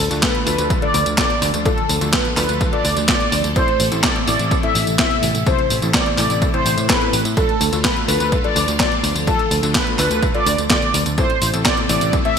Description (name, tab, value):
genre	italo disco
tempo	126 BPM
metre	4/4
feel	straight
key	D dorian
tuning	A4 = 440 Hz
part	mellow synth brass	melody	0.0-12.4 s	A4 to E5	-20 LUFS	equal	chorus, ping-pong delay
part	phased string machine	sustained chords	0.0-12.4 s	C3 to A4	-26 LUFS	equal	ensemble chorus, phaser
part	picked electric bass	bass	0.0-12.1 s	A1 to A2	-23 LUFS	equal	tube saturation
part	warm electric grand piano	stabs	0.1-12.4 s	A2 to A4	-27 LUFS	left 4 dB	none
part	clean 12-bit digital drum machine	drums	0.1-12.3 s	handclaps, hi-hat, snare drum, tambourine	-20 LUFS	equal	overdrive, gated reverb
part	electronic kick drum	drums	0.2-12.2 s	none	-22 LUFS	equal	none
room	moderate lush hall reverb, RT60 1.8 s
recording	bright 1980s-style digital production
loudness	-15 LUFS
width	side -7 dB against mid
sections	0.0-12.4 A section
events	none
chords	0.0 Dm; 3.6 Am; 7.4 Dm; 11.2 Am